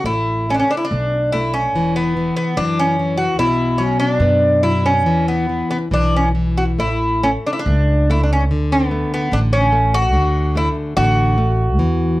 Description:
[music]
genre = fado-style ballad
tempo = 72 BPM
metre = 2/4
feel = rubato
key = A major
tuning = A4 = 444 Hz
[part]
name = Irish bouzouki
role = melody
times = 0.0-12.2 s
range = B3 to F#4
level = -18 LUFS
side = equal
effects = slapback echo
[part]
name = upright bass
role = bass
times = 0.0-12.2 s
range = E1 to F#2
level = -19 LUFS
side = equal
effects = none
[part]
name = nylon-string guitar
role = accompaniment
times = 0.1-12.2 s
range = B2 to B3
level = -21 LUFS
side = left 2 dB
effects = none
[sound]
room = small room ambience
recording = dry, close 1970s-style studio recording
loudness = -15 LUFS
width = side -17 dB against mid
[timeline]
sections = 0.0-12.2 A section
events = none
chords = 0.0 Asus2; 1.7 Esus2; 3.4 B5; 5.1 E5; 6.8 A; 8.5 D5

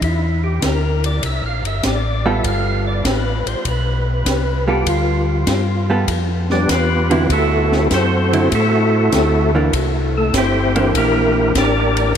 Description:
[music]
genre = soul jazz organ trio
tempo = 99 BPM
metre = 4/4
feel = swing 69% on 8ths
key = G mixolydian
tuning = A4 = 438 Hz
[part]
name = percussive tonewheel organ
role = melody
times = 0.0-12.1 s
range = G3 to F5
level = -18 LUFS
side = equal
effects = slow rotary speaker, overdrive, chorus vibrato
[part]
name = mellow tonewheel organ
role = bass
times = 0.0-12.2 s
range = G1 to A2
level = -19 LUFS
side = equal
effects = slow rotary speaker
[part]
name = open jazz drum kit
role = drums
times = 0.0-12.2 s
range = hi-hat, kick drum, ride cymbal, snare drum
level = -23 LUFS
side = left 1 dB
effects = none
[part]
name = vintage hollow-body jazz guitar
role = accompaniment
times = 2.3-11.5 s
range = D3 to A4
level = -23 LUFS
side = right 3 dB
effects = none
[sound]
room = wet cathedral reverb, RT60 7.2 s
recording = in a vast, echoing space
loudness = -14 LUFS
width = side -8 dB against mid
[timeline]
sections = 0.0-12.2 A section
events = tonewheel organ solo 0.0-12.2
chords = 0.0 G9; 7.3 D9; 9.7 C9

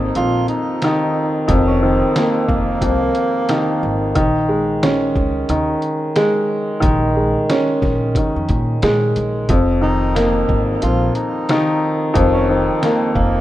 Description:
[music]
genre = hip hop, boom-bap hip-hop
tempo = 90 BPM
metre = 4/4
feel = swing 60% on 16ths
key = Bb minor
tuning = A4 = 440 Hz
[part]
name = warm baby grand piano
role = accompaniment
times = 0.0-13.4 s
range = F2 to Db4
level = -16 LUFS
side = equal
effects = cassette tape, high-pass filter, low-pass filter
[part]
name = upright bass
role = bass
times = 0.0-13.4 s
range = F1 to Bb2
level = -21 LUFS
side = equal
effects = none
[part]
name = breathy tenor saxophone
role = melody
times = 0.2-4.1, 9.8-13.4 s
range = Bb3 to F4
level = -23 LUFS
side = right 2 dB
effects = high-pass filter, low-pass filter, digital delay
[part]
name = trip hop sampler-style drum kit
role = drums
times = 0.2-13.3 s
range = hi-hat, kick drum, snare drum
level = -21 LUFS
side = equal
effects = none
[sound]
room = small room ambience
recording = rough home demo mix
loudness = -14 LUFS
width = side -14 dB against mid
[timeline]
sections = 0.0-13.4 A section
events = none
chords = 0.0 F7sus4; 4.2 Bbm7; 9.5 F7sus4

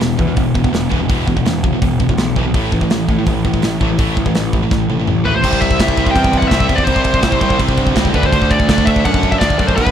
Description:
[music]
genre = heavy metal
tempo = 166 BPM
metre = 4/4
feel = straight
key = unclear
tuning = A4 = 440 Hz
[part]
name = heavy high-gain guitar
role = riff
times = 0.0-9.9 s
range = E2 to D4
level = -20 LUFS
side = right 9 dB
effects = distortion
[part]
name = high-gain distorted guitar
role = riff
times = 0.0-9.9 s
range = E2 to D4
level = -21 LUFS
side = left 10 dB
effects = distortion
[part]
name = fuzz picked electric bass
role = bass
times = 0.0-9.9 s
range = E1 to A2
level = -20 LUFS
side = equal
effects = overdrive
[part]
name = modern studio drum kit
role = drums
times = 0.0-9.9 s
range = crash cymbal, hi-hat, kick drum, snare drum, toms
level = -17 LUFS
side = equal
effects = none
[part]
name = high-gain lead guitar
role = melody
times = 5.3-9.9 s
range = B4 to G5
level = -17 LUFS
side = left 1 dB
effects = distortion
[part]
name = crunchy overdriven guitar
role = riff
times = 5.4-9.9 s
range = B2 to D4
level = -21 LUFS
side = right 1 dB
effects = none
[sound]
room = light reverb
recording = dark, warm production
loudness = -12 LUFS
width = side -9 dB against mid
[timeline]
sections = 0.0-5.4 A section; 5.4-9.9 B section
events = drum fill 4.7-5.4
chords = 0.0 E5; 2.5 A5; 5.4 C; 8.1 D

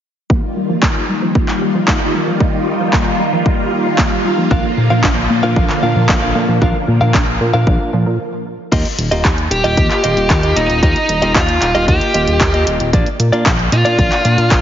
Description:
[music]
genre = italo disco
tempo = 114 BPM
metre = 4/4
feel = straight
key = unclear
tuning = A4 = 440 Hz
[part]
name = phased string machine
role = sustained chords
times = 0.3-8.2 s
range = D3 to F4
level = -18 LUFS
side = equal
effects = ensemble chorus, phaser
[part]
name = analog pluck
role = arpeggios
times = 0.3-8.2 s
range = F3 to Bb4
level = -22 LUFS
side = right 2 dB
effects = chorus, tape echo
[part]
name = electronic kick drum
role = drums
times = 0.3-14.6 s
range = none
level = -16 LUFS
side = equal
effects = overdrive
[part]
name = house drum kit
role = drums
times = 0.8-14.6 s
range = crash cymbal, handclaps, hi-hat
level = -20 LUFS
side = equal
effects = overdrive
[part]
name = direct-recorded clean electric guitar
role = stabs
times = 4.5-14.6 s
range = Bb3 to F5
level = -20 LUFS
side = equal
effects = none
[part]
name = chorused synth bass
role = bass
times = 4.5-14.6 s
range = Eb1 to Bb2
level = -17 LUFS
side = equal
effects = none
[part]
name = smooth overdriven lead guitar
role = melody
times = 9.5-14.6 s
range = Eb4 to G4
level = -16 LUFS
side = equal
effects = tape echo
[sound]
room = moderate lush hall reverb, RT60 1.7 s, digital ambience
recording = heavily compressed radio sound, nothing above 7.5 kHz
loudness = -12 LUFS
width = side -10 dB against mid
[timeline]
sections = 0.3-8.7 A section; 8.7-14.6 B section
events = filter sweep on synth arpeggio sound 0.3-8.7; stop 8.2-8.7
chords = 0.3 Ebadd9; 4.5 Bb; 8.7 Ebadd9; 12.9 Bb

